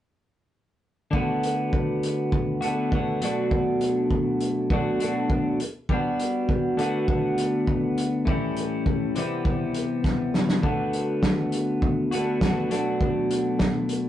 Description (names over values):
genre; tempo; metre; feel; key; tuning
indie rock; 101 BPM; 4/4; straight; D major; A4 = 441 Hz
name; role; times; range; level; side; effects
twelve-string electric guitar; riff; 1.1-14.1 s; A2 to F#4; -24 LUFS; equal; none
loose indie drum kit; drums; 1.1-14.0 s; hi-hat, kick drum, snare drum; -26 LUFS; equal; none
room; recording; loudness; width
wet studio reverb, RT60 0.6 s; rough rehearsal-room recording, warm saturation, nothing above 10.7 kHz; -22 LUFS; side -12 dB against mid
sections
1.1-14.1 A section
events
drum fill 10.0-10.6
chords
1.1 D6; 3.2 Bm7; 5.9 Gmaj7; 6.8 D6; 8.3 A7; 9.2 Cmaj7; 10.6 D6; 12.7 Bm7